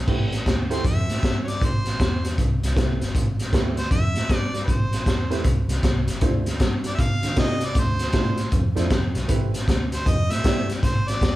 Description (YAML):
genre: electric blues shuffle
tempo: 156 BPM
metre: 4/4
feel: swing 64% on 8ths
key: A minor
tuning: A4 = 440 Hz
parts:
  - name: vintage muted fingered electric bass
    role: bass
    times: 0.0-11.4 s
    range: G1 to D3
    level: -27 LUFS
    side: equal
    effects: none
  - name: warm baby grand piano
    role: accompaniment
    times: 0.1-10.7 s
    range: A3 to D5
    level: -30 LUFS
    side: right 3 dB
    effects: none
  - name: crunchy breakbeat drum kit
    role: drums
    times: 0.1-11.3 s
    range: crash cymbal, hi-hat, kick drum, snare drum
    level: -21 LUFS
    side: equal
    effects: none
  - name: bright harmonica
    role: melody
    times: 0.7-11.4 s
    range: B4 to F5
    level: -29 LUFS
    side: equal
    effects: overdrive
room: light reverb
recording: band playing live in one room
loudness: -20 LUFS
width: side -16 dB against mid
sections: 0.1-11.4 A section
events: none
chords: 0.1 Am7; 6.2 Dm7; 9.3 Am7